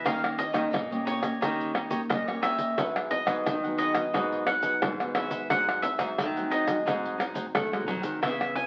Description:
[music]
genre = samba and choro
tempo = 88 BPM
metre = 4/4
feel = straight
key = unclear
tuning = A4 = 438 Hz
[part]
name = bowl-back mandolin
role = melody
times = 0.0-8.7 s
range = C#5 to G#5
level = -32 LUFS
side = equal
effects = none
[part]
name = cavaquinho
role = accompaniment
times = 0.0-8.7 s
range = D#4 to F#5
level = -38 LUFS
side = equal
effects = none
[part]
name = nylon-string guitar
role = accompaniment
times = 0.0-8.7 s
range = G#2 to G4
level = -37 LUFS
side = equal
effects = none
[part]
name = nylon-string guitar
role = bass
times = 0.0-8.7 s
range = G#2 to A3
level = -37 LUFS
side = equal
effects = none
[part]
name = maracas, surdo, pandeiro and tamborim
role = percussion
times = 0.1-8.7 s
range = none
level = -32 LUFS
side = equal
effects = none
[sound]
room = wet studio reverb, RT60 0.6 s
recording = very old 78 rpm record, vinyl crackle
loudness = -28 LUFS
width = mono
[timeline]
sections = 0.0-8.7 A section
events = drum fill 7.7-8.2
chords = 0.1 D#7; 2.8 G#m7; 5.5 G#7b9

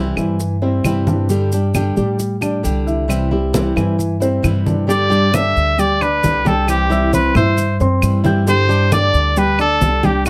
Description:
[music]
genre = latin, Cuban son and guajira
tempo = 134 BPM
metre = 4/4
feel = straight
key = unclear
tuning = A4 = 441 Hz
[part]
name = flamenco guitar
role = accompaniment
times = 0.0-10.3 s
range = C3 to G4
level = -24 LUFS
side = equal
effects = none
[part]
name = dark concert grand piano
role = arpeggios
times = 0.0-10.3 s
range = E3 to G6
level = -23 LUFS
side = equal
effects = none
[part]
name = upright bass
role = bass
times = 0.0-10.3 s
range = C2 to A2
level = -21 LUFS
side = equal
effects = none
[part]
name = claves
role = percussion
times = 0.2-10.3 s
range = none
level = -27 LUFS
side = equal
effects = none
[part]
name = congas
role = percussion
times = 0.2-10.3 s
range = none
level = -24 LUFS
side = equal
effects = none
[part]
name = maracas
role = percussion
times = 0.2-10.3 s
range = none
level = -35 LUFS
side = equal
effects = none
[part]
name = clear trumpet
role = melody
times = 4.9-10.3 s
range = G4 to E5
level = -19 LUFS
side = equal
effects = none
[sound]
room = light reverb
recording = close, detailed microphones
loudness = -16 LUFS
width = mono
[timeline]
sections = 0.0-4.9 A section; 4.9-10.3 B section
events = none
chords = 0.0 C; 1.3 Gsus2; 3.1 C; 4.9 G5; 6.7 C; 8.5 Gsus2

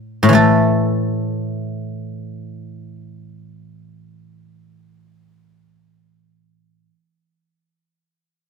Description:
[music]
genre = chinese traditional, Chinese solo plucked strings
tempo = free time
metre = none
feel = none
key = unclear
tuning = A4 = 440 Hz
[part]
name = guzheng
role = solo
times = 0.0-6.9 s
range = A2 to A4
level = -16 LUFS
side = left 1 dB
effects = none
[sound]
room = wet stone room reverb, RT60 1.0 s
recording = band playing live in one room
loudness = -15 LUFS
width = side -5 dB against mid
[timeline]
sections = 0.3-4.4 A section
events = none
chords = none

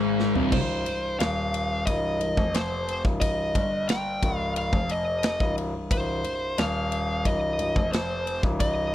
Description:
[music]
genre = stoner and doom metal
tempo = 89 BPM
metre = 4/4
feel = straight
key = C minor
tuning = A4 = 439 Hz
[part]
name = thick fuzz guitar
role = riff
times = 0.0-0.5 s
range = C2 to Ab3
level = -25 LUFS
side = left 18 dB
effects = distortion
[part]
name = thick fuzz guitar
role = riff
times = 0.0-0.5 s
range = C2 to Ab3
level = -27 LUFS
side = right 12 dB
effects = distortion
[part]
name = warm baby grand piano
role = bass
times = 0.0-8.9 s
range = C1 to Ab1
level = -28 LUFS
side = left 1 dB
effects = overdrive
[part]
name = big rock drum kit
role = drums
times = 0.2-8.8 s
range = crash cymbal, kick drum, ride cymbal, snare drum, toms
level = -28 LUFS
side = equal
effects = none
[part]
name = fuzz lead guitar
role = melody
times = 0.5-8.9 s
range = C5 to G5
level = -28 LUFS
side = equal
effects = distortion, slapback echo
[sound]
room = little or no reverb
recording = dry, close 1970s-style studio recording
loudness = -23 LUFS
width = side -12 dB against mid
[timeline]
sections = 0.5-8.9 A section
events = drum fill 0.2-0.5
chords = 0.0 N.C.; 0.5 Cm

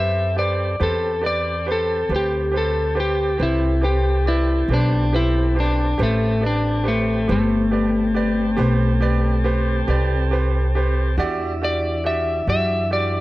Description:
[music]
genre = blues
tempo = 46 BPM (dotted quarters)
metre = 12/8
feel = straight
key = unclear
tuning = A4 = 444 Hz
[part]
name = electric slide guitar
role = melody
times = 0.0-13.2 s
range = A3 to E5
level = -21 LUFS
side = left 2 dB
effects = none
[part]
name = bright grand piano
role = accompaniment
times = 0.0-13.2 s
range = F#4 to D5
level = -26 LUFS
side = right 3 dB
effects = none
[part]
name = tonewheel organ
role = sustained chords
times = 0.0-13.2 s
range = E3 to A4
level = -30 LUFS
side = equal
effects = slow rotary speaker
[part]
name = upright bass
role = bass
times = 0.0-13.2 s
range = G1 to F#2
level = -21 LUFS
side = equal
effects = none
[sound]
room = little or no reverb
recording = dry, close 1970s-style studio recording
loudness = -18 LUFS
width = side -18 dB against mid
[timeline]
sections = 0.0-13.2 A section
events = electric slide guitar solo 0.0-13.2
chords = 0.0 Am7; 11.2 Em7

